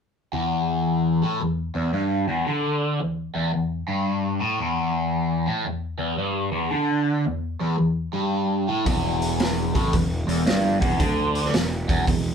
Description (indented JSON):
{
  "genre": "blues rock power trio and southern rock",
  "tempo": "112 BPM",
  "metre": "4/4",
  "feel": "swing 66% on 8ths",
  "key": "E minor",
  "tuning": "A4 = 440 Hz",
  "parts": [
    { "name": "overdriven semi-hollow guitar", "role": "riff", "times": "0.3-12.3 s", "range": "E2 to D3", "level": "-22 LUFS", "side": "left 1 dB", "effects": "phaser" },
    { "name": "fuzz picked electric bass", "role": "bass", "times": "8.9-12.3 s", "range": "E1 to D2", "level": "-26 LUFS", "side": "right 1 dB", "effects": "overdrive" },
    { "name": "raw garage drum kit", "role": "drums", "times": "8.9-12.2 s", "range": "hi-hat, kick drum, snare drum", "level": "-24 LUFS", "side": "right 1 dB", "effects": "none" }
  ],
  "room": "wet studio reverb, RT60 0.5 s",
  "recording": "band playing live in one room",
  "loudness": "-21 LUFS",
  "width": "side -6 dB against mid",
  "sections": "0.3-12.3 A section",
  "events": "none",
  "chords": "0.3 Em"
}